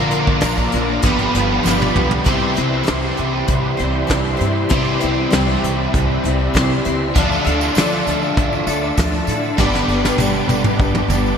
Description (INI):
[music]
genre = folk rock and heartland rock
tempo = 98 BPM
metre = 4/4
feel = straight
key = C major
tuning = A4 = 440 Hz
[part]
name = picked steel-string acoustic guitar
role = accompaniment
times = 0.0-11.4 s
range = G2 to C5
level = -21 LUFS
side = left 2 dB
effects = analog chorus
[part]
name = bright tonewheel organ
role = sustained chords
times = 0.0-11.4 s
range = G4 to E6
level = -27 LUFS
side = equal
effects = chorus vibrato, fast rotary speaker
[part]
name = overdriven electric guitar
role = riff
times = 0.0-11.4 s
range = G2 to G4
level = -20 LUFS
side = right 1 dB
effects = ensemble chorus
[part]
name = upright bass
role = bass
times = 0.0-11.3 s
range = G1 to A2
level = -22 LUFS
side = equal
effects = none
[part]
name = soft brush drum kit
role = drums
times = 0.1-11.2 s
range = hi-hat, kick drum, snare drum, toms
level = -20 LUFS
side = equal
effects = none
[part]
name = tambourine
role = percussion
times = 0.4-1.8, 7.3-11.3 s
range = none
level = -33 LUFS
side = right 12 dB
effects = none
[sound]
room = moderate lush hall reverb, RT60 2.2 s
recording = bright 1980s-style digital production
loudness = -15 LUFS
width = side -7 dB against mid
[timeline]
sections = 0.0-2.3 A section; 2.3-11.4 B section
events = drum fill 1.7-2.3, 9.6-11.4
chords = 0.0 Bb; 1.0 G7; 2.3 C; 7.2 Dmadd9; 9.6 G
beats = 0.43 1.04 1.66 | 2.27 2.88 3.49 4.10 | 4.71 5.32 5.93 6.54 | 7.15 7.76 8.37 8.98 | 9.58 10.19 10.80